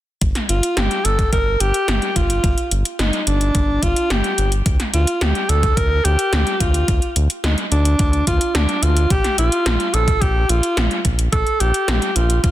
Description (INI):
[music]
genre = synthwave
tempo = 108 BPM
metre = 4/4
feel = straight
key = G minor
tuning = A4 = 438 Hz
[part]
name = round analog bass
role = bass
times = 0.2-12.5 s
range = G1 to D2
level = -18 LUFS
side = equal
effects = sidechain pumping
[part]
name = 80s electronic pad drums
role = drums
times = 0.2-12.5 s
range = hi-hat, snare drum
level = -22 LUFS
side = equal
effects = none
[part]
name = electronic kick drum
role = drums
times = 0.2-12.5 s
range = none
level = -19 LUFS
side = equal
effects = overdrive
[part]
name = warm alto saxophone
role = melody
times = 0.5-12.5 s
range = D4 to Bb4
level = -20 LUFS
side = equal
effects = digital delay
[sound]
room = light reverb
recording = dense, heavily limited modern master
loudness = -15 LUFS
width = side -14 dB against mid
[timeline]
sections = 0.2-12.5 A section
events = none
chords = 0.2 G5; 4.7 Dm; 9.1 Bb5